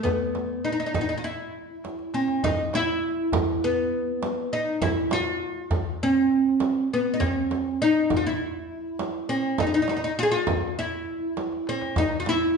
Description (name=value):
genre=Persian modal ensemble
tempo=101 BPM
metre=4/4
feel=straight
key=E dastgah chahargah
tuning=A4 = 439 Hz
part: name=oud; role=melody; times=0.0-12.6 s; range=B3 to G#4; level=-24 LUFS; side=equal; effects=none
part: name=frame drum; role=percussion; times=0.0-12.4 s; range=none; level=-31 LUFS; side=right 4 dB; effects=none
part: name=tombak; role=percussion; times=0.1-12.5 s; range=none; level=-32 LUFS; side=equal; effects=none
room=wet large studio reverb, RT60 1.2 s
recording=band playing live in one room, nothing above 11.0 kHz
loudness=-23 LUFS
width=side -5 dB against mid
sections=0.0-2.4 A section; 2.4-12.6 B section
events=drum fill 1.8-2.4, 11.4-12.0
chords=none